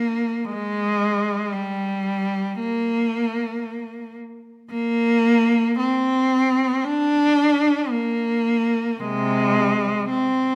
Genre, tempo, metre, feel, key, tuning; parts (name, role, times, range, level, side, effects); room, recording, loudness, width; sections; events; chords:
classical, free, expressive piece for unaccompanied cello; 56 BPM; 4/4; rubato; A4 = 439 Hz
rich cello; solo; 0.0-10.6 s; C3 to D4; -22 LUFS; equal
wet recital hall reverb, RT60 1.7 s; -21 LUFS; mono
0.0-10.6 A section